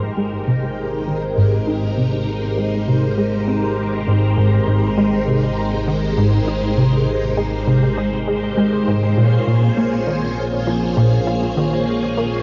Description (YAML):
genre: ambient, sequencer-driven space music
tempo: 100 BPM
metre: 4/4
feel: straight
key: unclear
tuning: A4 = 440 Hz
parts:
  - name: string machine, full ensemble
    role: sustained chords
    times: 0.0-12.4 s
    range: Ab3 to Db5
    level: -23 LUFS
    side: equal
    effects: phaser, ensemble chorus
  - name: plucky analog bass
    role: riff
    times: 0.0-12.4 s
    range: Ab2 to F4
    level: -20 LUFS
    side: equal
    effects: ensemble chorus, delay
  - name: analog drone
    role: bass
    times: 0.4-12.4 s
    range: Ab1 to Bb1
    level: -28 LUFS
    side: equal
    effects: chorus
room: wet huge ambient reverb, RT60 9.0 s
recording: worn, warbling old tape, cassette tape, warbly pitch drift, nothing above 7.5 kHz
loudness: -18 LUFS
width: mono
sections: 0.0-12.4 A section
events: none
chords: 0.0 Abmaj7; 9.2 Bbm7